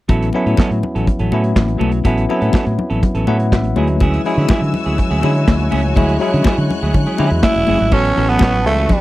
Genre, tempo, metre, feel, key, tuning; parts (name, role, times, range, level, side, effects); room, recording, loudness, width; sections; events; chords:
disco; 123 BPM; 4/4; straight; A major; A4 = 440 Hz
bell-like tine electric piano; accompaniment; 0.1-9.0 s; E3 to F#5; -20 LUFS; left 3 dB; medium stereo tremolo
clean electric guitar; accompaniment; 0.1-8.9 s; F#3 to A4; -22 LUFS; right 4 dB
fingered electric bass; bass; 0.1-8.9 s; E1 to D3; -17 LUFS; equal
modern studio drum kit; drums; 0.1-9.0 s; crash cymbal, handclaps, hi-hat, kick drum, snare drum; -16 LUFS; equal
congas; percussion; 0.1-9.0 s; -22 LUFS; left 4 dB
rich symphonic string section; sustained chords; 4.0-9.0 s; F#4 to F#6; -26 LUFS; left 2 dB
growling tenor saxophone; melody; 7.4-9.0 s; A3 to E4; -16 LUFS; right 2 dB
little or no reverb; dry, close 1970s-style studio recording; -13 LUFS; side -16 dB against mid
0.1-7.9 A section; 7.9-9.0 B section
tine electric piano fill 3.0-4.0
0.1 A69; 3.8 Dmaj9#11; 7.9 A69